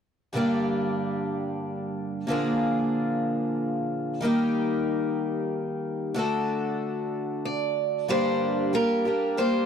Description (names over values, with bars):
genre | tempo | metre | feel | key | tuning
acoustic folk duo or small band | 93 BPM | 3/4 | straight | G minor | A4 = 440 Hz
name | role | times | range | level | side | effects
picked twelve-string acoustic guitar | accompaniment | 0.3-9.7 s | G2 to A4 | -25 LUFS | equal | none
picked acoustic archtop guitar | melody | 7.5-9.7 s | Bb4 to D5 | -25 LUFS | right 2 dB | none
room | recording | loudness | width
little or no reverb | dry, close 1970s-style studio recording | -24 LUFS | side -7 dB against mid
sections
0.3-8.1 A section; 8.1-9.7 B section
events
none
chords
0.3 Gm; 2.3 Bb7; 4.2 Eb; 6.2 D; 8.1 Gm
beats
| 0.34 0.99 1.63 | 2.28 2.93 3.57 | 4.22 4.87 5.51 | 6.16 6.80 7.45 | 8.09 8.74 9.38